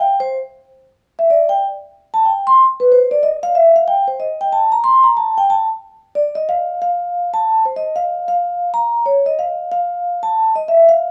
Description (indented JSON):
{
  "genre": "jazz",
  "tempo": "185 BPM",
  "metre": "3/4",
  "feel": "swing 64% on 8ths",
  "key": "F major",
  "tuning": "A4 = 443 Hz",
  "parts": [
    { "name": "vibraphone with soft mallets", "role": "solo", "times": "0.0-11.1 s", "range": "B4 to C6", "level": "-15 LUFS", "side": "equal", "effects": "none" }
  ],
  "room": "wet club reverb, RT60 0.8 s",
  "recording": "heard from further back in the room",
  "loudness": "-15 LUFS",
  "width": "mono",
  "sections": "0.0-3.9 A section; 3.9-11.1 A section",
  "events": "vibraphone solo 0.0-11.1",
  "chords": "none"
}